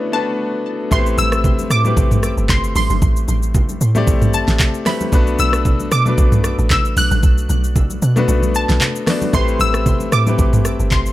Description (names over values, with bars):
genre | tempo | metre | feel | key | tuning
amapiano | 114 BPM | 4/4 | swing 55% on 16ths | A dorian | A4 = 441 Hz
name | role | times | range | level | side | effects
clear baby grand piano | accompaniment | 0.0-11.1 s | A3 to D5 | -21 LUFS | left 3 dB | none
lush unison pad | sustained chords | 0.0-0.9 s | D3 to B4 | -33 LUFS | right 2 dB | chorus, sidechain pumping
analog pluck | melody | 0.1-11.1 s | A5 to F#6 | -22 LUFS | equal | chorus, digital delay
deep log drum bass | bass | 0.9-11.1 s | G1 to B2 | -17 LUFS | equal | none
smooth R&B drum kit | drums | 0.9-11.1 s | handclaps, hi-hat, kick drum, rim click, shaker, snare drum, toms | -17 LUFS | equal | none
congas | percussion | 1.2-11.0 s | none | -25 LUFS | right 1 dB | none
room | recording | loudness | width
little or no reverb | none | -13 LUFS | side -15 dB against mid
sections
0.9-11.1 A section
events
break 0.0-0.9; drop 0.9-11.1; kick muted 8.3-9.3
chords
0.0 Bm7; 0.9 Am9; 5.1 Bm7; 9.3 Am9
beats
0.39 | 0.92 1.44 1.97 2.49 | 3.02 3.55 4.07 4.60 | 5.12 5.65 6.18 6.70 | 7.23 7.76 8.28 8.81 | 9.34 9.86 10.39 10.91